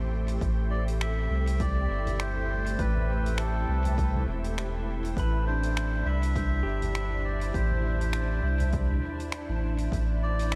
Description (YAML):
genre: ambient dub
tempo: 101 BPM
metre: 4/4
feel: swing 56% on 16ths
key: A minor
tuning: A4 = 440 Hz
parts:
  - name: soft additive organ-like pad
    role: sustained chords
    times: 0.0-10.6 s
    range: A3 to C5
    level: -39 LUFS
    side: equal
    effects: ensemble chorus, built-in reverb
  - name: warm sub bass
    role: bass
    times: 0.0-10.6 s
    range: E1 to C2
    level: -30 LUFS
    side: equal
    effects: tube saturation
  - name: soft-mallet drum kit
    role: drums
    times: 0.3-10.6 s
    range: finger snaps, hi-hat, toms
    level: -42 LUFS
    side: equal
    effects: studio ambience, dub echo
  - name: electronic kick drum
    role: drums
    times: 0.4-10.1 s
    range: none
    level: -34 LUFS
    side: equal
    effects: studio ambience
  - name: melodica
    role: melody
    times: 0.7-10.6 s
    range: A4 to E5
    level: -38 LUFS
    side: equal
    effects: dub echo
  - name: pedal steel guitar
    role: arpeggios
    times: 5.2-9.0 s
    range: D4 to B5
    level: -42 LUFS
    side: equal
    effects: dub echo
room: studio reverb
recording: none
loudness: -28 LUFS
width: mono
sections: 0.0-10.6 A section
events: none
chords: 0.0 Am7; 5.2 Cadd9